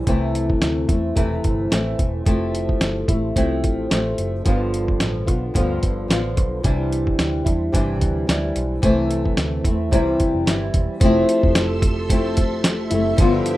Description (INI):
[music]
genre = indie pop, bedroom pop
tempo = 110 BPM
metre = 4/4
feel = swing 55% on 16ths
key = F major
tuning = A4 = 441 Hz
[part]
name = flamenco guitar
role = accompaniment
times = 0.0-13.6 s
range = G2 to F4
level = -21 LUFS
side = left 1 dB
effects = wide subtle chorus, warbly pitch drift
[part]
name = percussive tonewheel organ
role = accompaniment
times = 0.0-13.6 s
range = C4 to C5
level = -32 LUFS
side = right 5 dB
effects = chorus vibrato, slow rotary speaker, cassette tape
[part]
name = vintage muted picked electric bass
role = bass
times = 0.1-13.4 s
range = E1 to E2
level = -25 LUFS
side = equal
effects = none
[part]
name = dusty soul sampler-style drum kit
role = drums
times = 0.1-13.6 s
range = hi-hat, kick drum, snare drum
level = -20 LUFS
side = equal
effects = none
[part]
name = string machine, full ensemble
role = sustained chords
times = 11.0-13.6 s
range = G4 to E6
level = -30 LUFS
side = right 2 dB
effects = ensemble chorus
[sound]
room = moderate studio reverb, RT60 0.6 s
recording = rough home demo mix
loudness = -17 LUFS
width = side -16 dB against mid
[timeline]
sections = 0.0-11.0 A section; 11.0-13.6 B section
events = none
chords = 0.1 Am/C; 2.3 Fmaj7; 4.5 G7; 6.6 Cadd9; 8.8 Am/C; 9.9 C; 11.0 Fmaj7